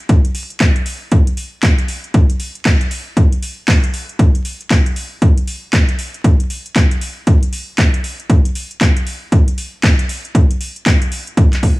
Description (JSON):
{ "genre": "house", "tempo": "117 BPM", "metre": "4/4", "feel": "swing 61% on 16ths", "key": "none", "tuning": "none", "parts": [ { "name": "electronic kick drum", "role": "drums", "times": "0.1-11.8 s", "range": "none", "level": "-12 LUFS", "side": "equal", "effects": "none" }, { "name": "house drum kit", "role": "drums", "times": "0.1-11.8 s", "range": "handclaps, hi-hat", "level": "-22 LUFS", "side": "equal", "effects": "overdrive" } ], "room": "little or no reverb", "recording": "vinyl crackle, small room ambience", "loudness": "-13 LUFS", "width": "side -20 dB against mid", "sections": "0.0-11.8 A section", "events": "none", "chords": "none" }